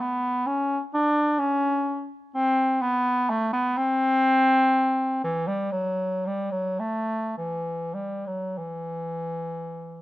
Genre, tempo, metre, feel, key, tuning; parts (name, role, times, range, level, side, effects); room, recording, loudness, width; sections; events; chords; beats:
classical, free, expressive piece for unaccompanied bass clarinet; 30-43 BPM (dotted quarters); 6/8; rubato; A4 = 443 Hz
warm bass clarinet; solo; 0.0-10.0 s; E3 to D4; -23 LUFS; equal
light reverb; close, detailed microphones; -23 LUFS; side -16 dB against mid
0.0-10.0 A section
0.94 | 2.36 3.79 | 5.23 6.80 | 8.62